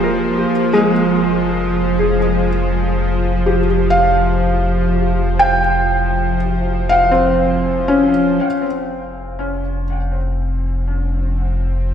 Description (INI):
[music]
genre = ambient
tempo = 60 BPM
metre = 4/4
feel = straight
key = F minor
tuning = A4 = 442 Hz
[part]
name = felt-muted upright piano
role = arpeggios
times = 0.0-9.8 s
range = Ab3 to G5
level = -17 LUFS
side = left 1 dB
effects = tape echo
[part]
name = warm sub bass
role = bass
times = 0.0-11.9 s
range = F1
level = -20 LUFS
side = equal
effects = none
[part]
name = bowed-like drone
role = drone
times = 0.0-11.9 s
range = F3 to C5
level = -20 LUFS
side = right 2 dB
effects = built-in reverb
[sound]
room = wet concert hall reverb, RT60 2.0 s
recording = none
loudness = -14 LUFS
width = side -8 dB against mid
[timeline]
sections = 0.0-8.5 A section; 8.5-11.9 B section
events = fade-in on synth drone 8.5-11.9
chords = 0.0 Fm; 0.5 Bb7sus2/F; 8.5 F5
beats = | 0.50 1.49 2.47 3.45 | 4.44 5.43 6.43 7.44 | 8.45 9.46 10.46 11.45